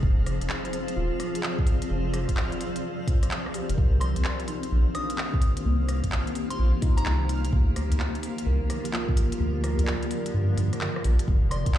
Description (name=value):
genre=future garage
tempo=128 BPM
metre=4/4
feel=swing 65% on 16ths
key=unclear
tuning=A4 = 440 Hz
part: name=tine electric piano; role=accompaniment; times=0.0-11.8 s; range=Bb3 to Eb5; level=-36 LUFS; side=left 1 dB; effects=medium tremolo, vintage 12-bit sampler grit, sidechain pumping, tape echo
part: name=granular cloud pad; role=sustained chords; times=0.0-11.8 s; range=D3 to D5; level=-32 LUFS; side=equal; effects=built-in reverb, sidechain pumping
part: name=warm sub bass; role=bass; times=0.0-11.7 s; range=Eb1 to G2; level=-24 LUFS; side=equal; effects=sidechain pumping
part: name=electronic kick drum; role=drums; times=0.0-11.7 s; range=none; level=-23 LUFS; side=equal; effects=none
part: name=backwards swelling texture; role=texture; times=0.0-11.3 s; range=F4 to F5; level=-41 LUFS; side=right 2 dB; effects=built-in reverb
part: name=organic electronic drum kit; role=drums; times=0.3-11.8 s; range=handclaps, hi-hat, rim click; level=-34 LUFS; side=equal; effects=none
part: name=soft synth bell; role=melody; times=4.0-7.3, 11.5-11.8 s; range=Bb5 to Eb6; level=-38 LUFS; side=equal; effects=chorus, tape echo
room=little or no reverb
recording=played on a big sound system in a bare room, large studio reverb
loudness=-23 LUFS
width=side -12 dB against mid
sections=0.0-11.3 A section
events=kick drops out 9.4-11.3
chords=0.0 Fm7; 3.8 Bb6; 11.3 Fm7